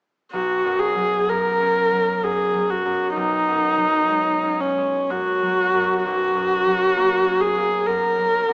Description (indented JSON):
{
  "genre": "classical, impressionist duo for viola and harp",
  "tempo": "58-67 BPM",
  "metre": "3/4",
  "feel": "rubato",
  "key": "B major",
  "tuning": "A4 = 440 Hz",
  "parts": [
    { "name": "dark viola", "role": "melody", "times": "0.3-8.5 s", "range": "C#4 to A#4", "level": "-21 LUFS", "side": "equal", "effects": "none" },
    { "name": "concert harp", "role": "accompaniment", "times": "0.3-8.5 s", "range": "B1 to C#4", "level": "-30 LUFS", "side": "equal", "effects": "none" }
  ],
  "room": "wet recital hall reverb, RT60 1.6 s",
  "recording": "small speaker sound",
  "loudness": "-20 LUFS",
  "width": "mono",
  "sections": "0.3-8.5 A section",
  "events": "none",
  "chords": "0.3 Bsus2; 3.2 F#sus24/B; 6.0 Bsus2",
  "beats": "| 0.32 1.28 2.23 | 3.17 4.10 5.11 | 6.04 6.96 7.87"
}